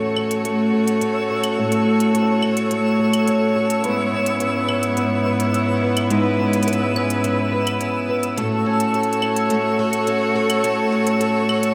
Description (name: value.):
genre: folktronica.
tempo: 106 BPM.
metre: 4/4.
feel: straight.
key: A major.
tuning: A4 = 440 Hz.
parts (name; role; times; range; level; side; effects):
bright string quartet; sustained chords; 0.0-11.7 s; G#2 to C#5; -23 LUFS; equal; none.
picked twelve-string acoustic guitar; arpeggios; 0.0-11.7 s; G#2 to B4; -23 LUFS; equal; low-pass filter, digital delay.
twinkling granular texture; texture; 0.1-11.7 s; E6; -32 LUFS; equal; built-in reverb.
electronic claves and hi-hat; drums; 0.2-11.7 s; none; -30 LUFS; equal; none.
room: moderate plate reverb, RT60 1.3 s, small room ambience.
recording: rough home demo mix.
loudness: -19 LUFS.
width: mono.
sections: 0.0-11.7 A section.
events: filter sweep on twelve-string acoustic guitar 0.0-11.7.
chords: 0.0 A6; 3.9 C#m7/G#; 8.4 A6.